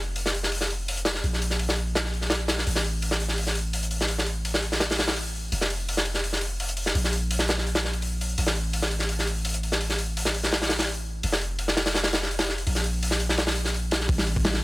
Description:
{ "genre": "drum and bass, jungle", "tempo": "168 BPM", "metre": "4/4", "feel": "straight", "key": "unclear", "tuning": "A4 = 440 Hz", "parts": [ { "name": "long sustained 808-style bass", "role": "bass", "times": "0.0-14.6 s", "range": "F1 to Bb1", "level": "-28 LUFS", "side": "equal", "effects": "none" }, { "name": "crunchy breakbeat drum kit", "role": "drums", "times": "0.2-14.6 s", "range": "hi-hat, kick drum, snare drum", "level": "-25 LUFS", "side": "equal", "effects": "high-pass filter on kick, high-pass filter on hats, high-pass filter on snare, high-pass filter on room" }, { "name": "dusty soul sampler-style drum kit", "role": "drums", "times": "14.1-14.5 s", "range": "hi-hat, snare drum", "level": "-40 LUFS", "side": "left 4 dB", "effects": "none" } ], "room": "studio reverb", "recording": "none", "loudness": "-23 LUFS", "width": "side -22 dB against mid", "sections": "0.0-14.1 A section", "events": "none", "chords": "none" }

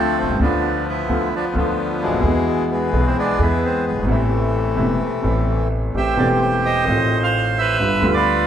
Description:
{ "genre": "tango", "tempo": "130 BPM", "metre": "4/4", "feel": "rubato", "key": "A harmonic minor", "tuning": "A4 = 442 Hz", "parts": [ { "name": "bandoneon", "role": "melody", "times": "0.0-8.5 s", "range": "B2 to F5", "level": "-20 LUFS", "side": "equal", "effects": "none" }, { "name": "clear concert grand piano", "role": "accompaniment", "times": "0.0-8.5 s", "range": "E1 to G#4", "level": "-21 LUFS", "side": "equal", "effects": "none" }, { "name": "upright bass", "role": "bass", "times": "0.0-8.5 s", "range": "E1 to E2", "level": "-23 LUFS", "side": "equal", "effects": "none" } ], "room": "wet stone room reverb, RT60 1.3 s", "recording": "band playing live in one room, lossy compression artefacts", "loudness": "-16 LUFS", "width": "side -9 dB against mid", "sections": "0.0-5.9 A section; 5.9-8.5 B section", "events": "none", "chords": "0.4 Bdim/D; 2.2 E; 4.1 Amadd9; 5.9 Am7; 6.9 F7/A; 7.8 G7" }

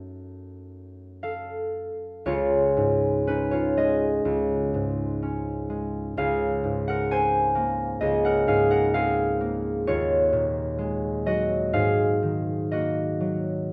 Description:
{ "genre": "classical, solo harp piece", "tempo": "63 BPM", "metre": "4/4", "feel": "uneven beats, rubato", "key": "Db major", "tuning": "A4 = 440 Hz", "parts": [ { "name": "concert harp", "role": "solo", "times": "0.0-13.7 s", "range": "Db2 to A5", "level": "-25 LUFS", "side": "equal", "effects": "none" } ], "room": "wet stone room reverb, RT60 1.0 s", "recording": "none", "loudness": "-25 LUFS", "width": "mono", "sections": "0.0-2.3 A section; 2.3-13.7 B section", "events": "none", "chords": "0.0 Gbm6; 2.3 Dbadd9; 6.2 Bbm11/Db; 9.9 Ebm11; 11.7 Ab9sus4" }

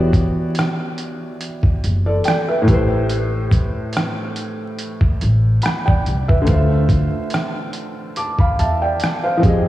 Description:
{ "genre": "lo-fi hip hop", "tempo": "71 BPM", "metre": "4/4", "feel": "swing 55% on 16ths", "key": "unclear", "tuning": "A4 = 440 Hz", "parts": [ { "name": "felt-muted upright piano", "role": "accompaniment", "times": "0.0-9.7 s", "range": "A2 to D6", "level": "-20 LUFS", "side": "equal", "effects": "cassette tape, low-pass filter" }, { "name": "upright bass", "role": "bass", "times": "0.0-9.7 s", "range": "E1 to F2", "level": "-18 LUFS", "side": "equal", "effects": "none" }, { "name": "trip hop sampler-style drum kit", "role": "drums", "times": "0.1-9.7 s", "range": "hi-hat, kick drum, rim click", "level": "-19 LUFS", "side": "equal", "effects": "none" } ], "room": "moderate lush hall reverb, RT60 2.8 s", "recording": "dreamy mix soaked in reverb, vinyl crackle", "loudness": "-15 LUFS", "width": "side -15 dB against mid", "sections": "0.0-9.7 A section", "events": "none", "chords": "0.0 Em9; 2.7 Am9; 6.5 Dm9" }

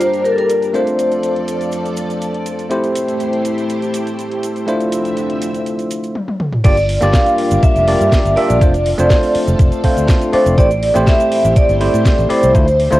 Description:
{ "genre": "nu-disco, nu disco", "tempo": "122 BPM", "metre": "4/4", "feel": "straight", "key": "G dorian", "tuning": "A4 = 440 Hz", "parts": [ { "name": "vibraphone with medium hard mallets", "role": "melody", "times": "0.0-1.7, 6.6-13.0 s", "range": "A4 to F5", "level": "-16 LUFS", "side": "equal", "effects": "cassette tape, analog delay" }, { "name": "bell-like tine electric piano", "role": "accompaniment", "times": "0.0-13.0 s", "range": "A3 to E5", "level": "-18 LUFS", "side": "equal", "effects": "medium stereo tremolo, cassette tape" }, { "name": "string machine, full ensemble", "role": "sustained chords", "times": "0.0-13.0 s", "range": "D3 to E5", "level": "-24 LUFS", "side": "equal", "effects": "ensemble chorus, sidechain pumping, cassette tape" }, { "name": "house drum kit", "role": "drums", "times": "0.0-13.0 s", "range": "crash cymbal, hi-hat, snare drum, toms", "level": "-25 LUFS", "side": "equal", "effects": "small room ambience, cassette tape" }, { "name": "cabasa", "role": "percussion", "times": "0.0-13.0 s", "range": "none", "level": "-37 LUFS", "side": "right 8 dB", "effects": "none" }, { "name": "fingered electric bass", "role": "bass", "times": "6.6-13.0 s", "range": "F1 to A2", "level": "-17 LUFS", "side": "equal", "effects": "none" }, { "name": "electronic kick drum", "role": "drums", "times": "6.6-12.7 s", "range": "none", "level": "-12 LUFS", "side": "equal", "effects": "small room ambience, cassette tape" } ], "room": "moderate small room reverb, RT60 0.6 s", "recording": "home recording on cassette", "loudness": "-12 LUFS", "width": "side -16 dB against mid", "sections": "0.0-6.6 A section; 6.6-13.0 B section", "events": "filter sweep on drum 0.0-6.6; drum fill 6.2-6.6; drop 6.6-13.0", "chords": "0.0 Gm7; 0.7 F6; 2.7 Am7; 4.7 Dm9; 6.6 Gm7; 8.6 F6; 10.6 Am7" }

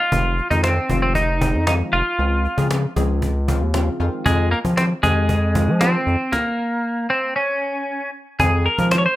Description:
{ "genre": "dance-pop", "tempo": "116 BPM", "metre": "4/4", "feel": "straight", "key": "F minor", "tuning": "A4 = 440 Hz", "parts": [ { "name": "twelve-string electric guitar", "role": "melody", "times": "0.0-9.2 s", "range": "Ab3 to Db5", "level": "-20 LUFS", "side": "equal", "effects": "none" }, { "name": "funky polysynth comp", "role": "accompaniment", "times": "0.1-9.0 s", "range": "Db3 to Ab4", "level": "-27 LUFS", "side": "left 1 dB", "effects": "chorus" }, { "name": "round analog bass", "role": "bass", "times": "0.1-9.1 s", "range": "F1 to F3", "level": "-19 LUFS", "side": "equal", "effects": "none" }, { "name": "cajon", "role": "drums", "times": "0.1-9.0 s", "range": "none", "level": "-25 LUFS", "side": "equal", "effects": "none" } ], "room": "moderate studio reverb, RT60 0.6 s", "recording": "rough home demo mix", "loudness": "-17 LUFS", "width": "side -15 dB against mid", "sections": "0.0-8.4 A section", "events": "stop 6.3-8.4", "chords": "0.1 Fm7; 2.2 Dbmaj7; 4.0 Fm7; 6.3 N.C.; 8.4 Fm7" }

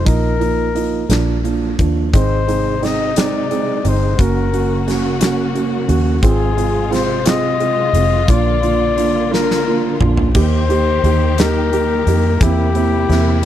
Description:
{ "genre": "six-eight pop ballad", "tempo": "58 BPM (dotted quarters)", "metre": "6/8", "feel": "straight", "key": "unclear", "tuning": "A4 = 440 Hz", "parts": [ { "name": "warm flugelhorn", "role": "melody", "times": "0.0-13.4 s", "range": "G4 to Eb5", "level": "-19 LUFS", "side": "left 7 dB", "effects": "none" }, { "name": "vintage muted fingered electric bass", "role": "bass", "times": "0.0-13.4 s", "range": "F1 to F2", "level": "-18 LUFS", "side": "equal", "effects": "none" }, { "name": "felt-muted upright piano", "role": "accompaniment", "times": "0.1-13.4 s", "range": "F3 to G4", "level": "-19 LUFS", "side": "right 7 dB", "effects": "none" }, { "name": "huge arena drum kit", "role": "drums", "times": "0.1-13.3 s", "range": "crash cymbal, hi-hat, kick drum, snare drum, toms", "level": "-21 LUFS", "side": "left 1 dB", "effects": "none" }, { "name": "dark studio string section", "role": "sustained chords", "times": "2.1-13.4 s", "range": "C3 to G4", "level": "-24 LUFS", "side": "left 4 dB", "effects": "none" } ], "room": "little or no reverb", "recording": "none", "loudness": "-13 LUFS", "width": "side -11 dB against mid", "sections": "0.0-10.4 A section; 10.4-13.4 B section", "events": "drum fill 9.3-10.4", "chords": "0.1 Bbsus4; 1.1 Bb; 2.1 Ab; 4.2 Gb; 6.2 Fm/Ab; 8.3 Bb; 10.4 Eb; 12.4 C7/E" }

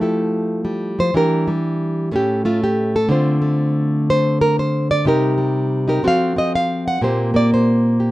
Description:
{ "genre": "solo jazz", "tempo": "123 BPM", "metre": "4/4", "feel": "swing 67% on 8ths", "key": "F major", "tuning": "A4 = 440 Hz", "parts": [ { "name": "nylon-string guitar", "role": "solo", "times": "0.0-8.1 s", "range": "A2 to Gb5", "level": "-16 LUFS", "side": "equal", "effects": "none" } ], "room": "light reverb", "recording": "dark, warm production", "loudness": "-16 LUFS", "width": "side -17 dB against mid", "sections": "0.0-8.1 A section", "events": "nylon-string guitar solo 0.0-8.1", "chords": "0.0 Fmaj9; 1.1 Em7b5; 2.1 A; 3.1 Dm7; 5.1 Cm7; 6.0 F; 7.0 Bbsus2" }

